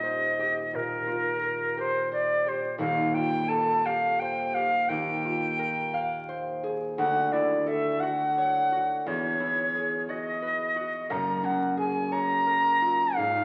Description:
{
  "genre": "classical, impressionist duo for flute and harp",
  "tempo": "58 BPM (dotted quarters)",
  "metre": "12/8",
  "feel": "rubato",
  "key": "unclear",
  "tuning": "A4 = 445 Hz",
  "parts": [
    { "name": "silver concert flute", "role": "melody", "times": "0.0-13.4 s", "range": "Bb4 to A#5", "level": "-28 LUFS", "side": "equal", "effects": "none" },
    { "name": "concert harp", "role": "accompaniment", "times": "0.0-13.4 s", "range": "Eb1 to F5", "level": "-33 LUFS", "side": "equal", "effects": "none" }
  ],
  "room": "wet recital hall reverb, RT60 1.4 s",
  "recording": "very old 78 rpm record, vinyl crackle",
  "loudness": "-27 LUFS",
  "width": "mono",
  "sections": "0.0-13.4 A section",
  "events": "none",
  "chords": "0.0 Eb69; 2.8 Fadd9/Eb; 4.9 Bb9sus4/Eb; 7.0 Dmaj9; 9.1 Emaj9; 11.1 F#maj9"
}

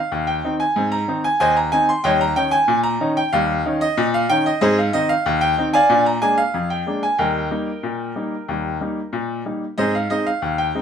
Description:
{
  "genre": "ragtime piano",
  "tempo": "93 BPM",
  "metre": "2/4",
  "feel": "straight",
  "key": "Ab major",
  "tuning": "A4 = 439 Hz",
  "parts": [
    { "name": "bright baby grand piano", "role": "solo", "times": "0.0-10.8 s", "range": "Eb2 to C6", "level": "-17 LUFS", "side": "equal", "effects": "none" }
  ],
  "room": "moderate studio reverb, RT60 0.6 s",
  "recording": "band playing live in one room",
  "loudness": "-17 LUFS",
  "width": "side -8 dB against mid",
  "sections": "0.0-10.8 A section",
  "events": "none",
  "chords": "0.0 Ab; 2.0 Eb7; 4.6 Ab; 5.9 Bb7; 7.2 Eb; 9.8 Ab"
}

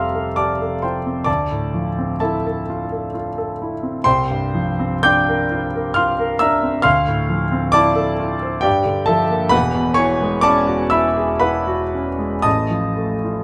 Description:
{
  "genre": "classical, impressionist solo piano",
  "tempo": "57-69 BPM",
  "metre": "3/4",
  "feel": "rubato",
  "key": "unclear",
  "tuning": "A4 = 440 Hz",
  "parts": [
    { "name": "clear grand piano", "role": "solo", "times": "0.0-13.4 s", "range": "E1 to G6", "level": "-19 LUFS", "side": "equal", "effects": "none" }
  ],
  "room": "moderate large studio reverb, RT60 1.4 s",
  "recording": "none",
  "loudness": "-19 LUFS",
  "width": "mono",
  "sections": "0.0-13.4 A section",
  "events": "none",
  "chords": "0.0 Fadd9; 1.3 Dm9; 4.1 C11; 6.9 Dm9; 8.7 Gm7; 9.5 E13; 12.5 A(#5, no3)"
}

